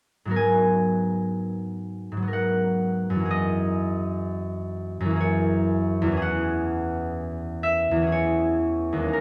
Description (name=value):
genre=classical, solo harp piece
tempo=62 BPM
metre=3/4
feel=uneven beats, rubato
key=G# minor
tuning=A4 = 441 Hz
part: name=concert harp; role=solo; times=0.3-9.2 s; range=D#2 to G#5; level=-25 LUFS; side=equal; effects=none
room=moderate concert hall reverb, RT60 2.1 s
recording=close, detailed microphones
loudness=-25 LUFS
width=mono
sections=0.4-9.2 A section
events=none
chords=0.4 G#m9; 3.3 F#9; 6.2 E69